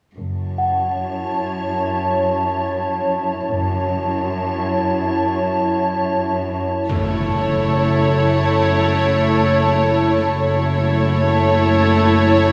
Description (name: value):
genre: cinematic, suspense film score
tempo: free time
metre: none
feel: none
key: F# minor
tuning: A4 = 440 Hz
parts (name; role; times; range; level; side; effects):
- glassy FM pad; sustained chords; 0.7-12.5 s; E4 to A5; -22 LUFS; equal; ensemble chorus, built-in reverb
- rich studio double bass section; bass; 0.2-12.5 s; F#1; -23 LUFS; equal; none
- warm studio cello section; bass; 0.2-12.5 s; F#2; -28 LUFS; equal; none
- small celesta; texture; 0.6-12.5 s; C#5 to F#5; -26 LUFS; equal; none
- rich studio violin section; melody; 6.9-12.5 s; C#5; -24 LUFS; equal; none
- warm studio viola section; accompaniment; 6.9-12.5 s; A3 to E4; -22 LUFS; equal; none
- impact; sound effects; 6.9-10.3 s; none; -29 LUFS; equal; none
room: wet scoring stage reverb, RT60 1.9 s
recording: studio ambience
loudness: -18 LUFS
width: mono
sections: 0.2-6.9 A section; 6.9-12.5 B section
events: impact 6.9-10.3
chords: 0.2 F#m7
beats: free time